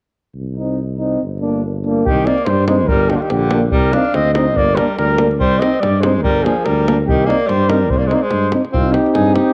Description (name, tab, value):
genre	balkan folk, Balkan brass band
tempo	144 BPM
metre	2/4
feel	swing 54% on 16ths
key	C minor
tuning	A4 = 439 Hz
part	mellow tuba	bass	0.3-9.4 s	G1 to G2	-21 LUFS	equal	tube saturation
part	clear trombone	accompaniment	0.6-9.5 s	D4 to Eb4	-26 LUFS	equal	cassette tape
part	mellow euphonium	accompaniment	0.6-9.5 s	Bb3 to C4	-24 LUFS	equal	cassette tape
part	mellow flugelhorn	melody	2.1-9.5 s	F4 to F5	-20 LUFS	equal	cassette tape
part	bright alto saxophone	second line	2.1-9.5 s	D3 to Eb4	-23 LUFS	equal	cassette tape
part	davul	percussion	2.1-9.5 s	none	-25 LUFS	equal	none
room	moderate spring reverb, RT60 1.6 s, studio reverb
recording	home recording on cassette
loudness	-16 LUFS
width	mono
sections	0.4-2.1 A section; 2.1-8.7 B section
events	none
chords	0.4 Cm; 1.2 Gm; 2.1 Cm; 2.9 Gm; 3.7 Cm; 4.6 Gm; 5.4 Cm; 6.2 Gm; 7.1 Cm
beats	| 0.37 0.79 | 1.22 1.64 | 2.06 2.48 | 2.90 3.32 | 3.74 4.15 | 4.57 4.99 | 5.41 5.82 | 6.24 6.66 | 7.07 7.49 | 7.90 8.32 | 8.73 9.15